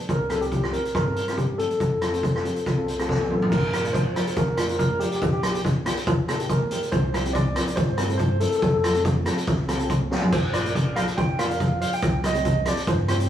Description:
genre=calypso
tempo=141 BPM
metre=4/4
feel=straight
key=Bb major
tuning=A4 = 442 Hz
part: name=steel pan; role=accompaniment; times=0.0-13.3 s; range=Bb3 to C5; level=-32 LUFS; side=left 1 dB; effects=none
part: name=overdriven tine electric piano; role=melody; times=0.1-13.3 s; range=G4 to G5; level=-26 LUFS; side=equal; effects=fast tremolo
part: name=upright bass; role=bass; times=0.1-13.3 s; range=Bb1 to G2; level=-30 LUFS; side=equal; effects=none
part: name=street-band drum kit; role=drums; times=0.1-13.3 s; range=crash cymbal, hi-hat, kick drum, rim click, snare drum, toms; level=-23 LUFS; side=equal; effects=none
part: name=congas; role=percussion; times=0.3-13.2 s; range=none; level=-34 LUFS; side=right 1 dB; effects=none
room=moderate stone room reverb, RT60 1.2 s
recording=rough rehearsal-room recording, warm saturation, small room ambience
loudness=-21 LUFS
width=side -10 dB against mid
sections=0.0-3.5 A section; 3.5-13.3 B section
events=drum fill 3.1-3.5, 10.1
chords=0.1 Cm7; 1.8 F; 3.5 Bb; 5.2 Eb/Bb; 6.9 C7; 8.6 F; 10.3 Bbadd9; 12.0 Cm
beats=| 0.09 0.52 0.95 1.38 | 1.80 2.23 2.66 3.09 | 3.51 3.94 4.37 4.79 | 5.22 5.64 6.07 6.49 | 6.92 7.35 7.77 8.20 | 8.62 9.05 9.47 9.90 | 10.32 10.75 11.18 11.60 | 12.03 12.45 12.88

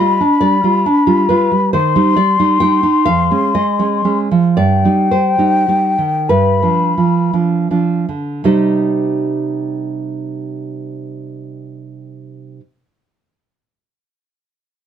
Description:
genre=romantic duo for flute and classical guitar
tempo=26-47 BPM (dotted quarters)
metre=6/8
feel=rubato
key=C minor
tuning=A4 = 435 Hz
part: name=mellow silver concert flute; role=melody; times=0.0-7.3 s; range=G5 to C6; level=-15 LUFS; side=left 5 dB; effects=plate reverb
part: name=nylon-string guitar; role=accompaniment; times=0.0-12.6 s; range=F2 to G5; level=-14 LUFS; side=right 3 dB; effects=none
room=light reverb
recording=none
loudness=-12 LUFS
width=side -9 dB against mid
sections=0.0-8.5 A section; 8.5-12.9 B section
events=slowing down 0.4-8.5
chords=0.0 G7; 1.7 Cm/Eb; 3.1 Db/F; 4.6 Cm/G; 6.3 G7; 8.5 Cm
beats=0.42 | 1.75 3.07 | 4.57 6.30 | 8.46 10.69

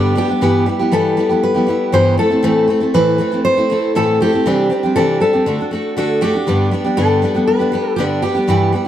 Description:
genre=acoustic pop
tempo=119 BPM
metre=4/4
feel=straight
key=G major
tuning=A4 = 439 Hz
part: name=fingerpicked steel-string acoustic guitar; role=melody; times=0.0-8.7 s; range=G4 to C5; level=-17 LUFS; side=left 1 dB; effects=none
part: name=picked steel-string acoustic guitar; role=accompaniment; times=0.0-8.9 s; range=G2 to A4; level=-15 LUFS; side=equal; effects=none
room=moderate plate reverb, RT60 2.8 s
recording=dark, warm production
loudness=-13 LUFS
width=side -11 dB against mid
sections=0.0-6.5 A section; 6.5-8.9 A section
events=none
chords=0.4 Em/G; 2.2 Am; 4.5 Cadd9; 5.5 D; 6.5 G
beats=| 0.42 0.92 1.43 1.93 | 2.44 2.94 3.45 3.95 | 4.46 4.96 5.46 5.97 | 6.47 6.97 7.48 7.98 | 8.48

